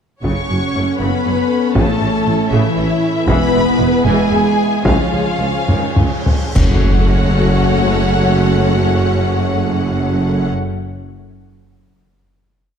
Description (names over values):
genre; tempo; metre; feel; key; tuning
cinematic, epic orchestral film score; 67-79 BPM (dotted quarters); 6/8; straight; F# minor; A4 = 440 Hz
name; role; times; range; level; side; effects
rich studio violin section; melody; 0.2-10.5 s; E5 to C#6; -25 LUFS; left 4 dB; none
dark symphonic violin section; second line; 0.2-10.5 s; E4 to C#5; -25 LUFS; left 2 dB; none
clear symphonic viola section; accompaniment; 0.2-10.5 s; C#3 to C#4; -24 LUFS; equal; none
clear symphonic string section; sustained chords; 0.2-10.5 s; C#4 to G#5; -24 LUFS; left 2 dB; none
clear trombone section; sustained chords; 0.2-10.5 s; E3 to C#4; -23 LUFS; right 4 dB; none
dark French horn section; sustained chords; 0.2-10.5 s; E3 to C#4; -22 LUFS; left 4 dB; none
mellow tuba; bass; 0.2-10.5 s; E1 to C#2; -22 LUFS; right 3 dB; none
rich symphonic cello section; bass; 0.2-10.5 s; C#2 to A2; -22 LUFS; right 2 dB; none
rich symphonic double bass section; bass; 0.2-10.5 s; E1 to C#2; -21 LUFS; right 2 dB; none
solo taiko drums; drums; 0.2-6.7 s; none; -17 LUFS; equal; none
cymbal swell, clash cymbals and concert bass drum; percussion; 3.3-7.7 s; none; -19 LUFS; equal; none
cymbal swell and impact; sound effects; 5.9-8.3 s; none; -28 LUFS; left 1 dB; none
room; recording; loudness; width
moderate scoring stage reverb, RT60 1.7 s; dark, warm production; -13 LUFS; side -7 dB against mid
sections
0.2-6.6 theme; 6.6-10.1 final chord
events
slowing down 2.5-6.6; drum fill 5.7-6.6; cymbal swell 5.9-6.6; band accent 6.6-7.1; impact 6.6-8.3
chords
0.2 F#m; 1.8 A; 3.3 E; 4.9 C#; 6.6 F#m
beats
| 0.24 1.00 | 1.76 2.52 | 3.28 4.06 | 4.86 5.68 | 6.55 7.45 | 8.34 9.23